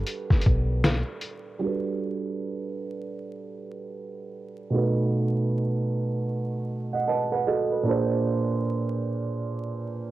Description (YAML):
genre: lo-fi hip hop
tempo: 77 BPM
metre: 4/4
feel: swing 62% on 16ths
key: G major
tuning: A4 = 438 Hz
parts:
  - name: felt-muted upright piano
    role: accompaniment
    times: 0.0-10.1 s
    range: Bb2 to A5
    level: -26 LUFS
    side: right 2 dB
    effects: low-pass filter, cassette tape
  - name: lo-fi sampler-style drum kit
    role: drums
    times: 0.1-1.4 s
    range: hi-hat, kick drum, snare drum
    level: -22 LUFS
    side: equal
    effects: cassette tape
  - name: deep dub fingered electric bass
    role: bass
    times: 0.5-1.0 s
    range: B1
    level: -25 LUFS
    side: equal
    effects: none
room: light reverb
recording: home recording on cassette, vinyl crackle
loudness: -24 LUFS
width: side -15 dB against mid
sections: 0.0-1.6 A section; 1.6-10.1 B section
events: filter sweep on felt piano 1.6-10.1; felt piano fill 6.7-7.9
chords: 0.0 Gmaj7; 4.7 B7; 7.9 Bb7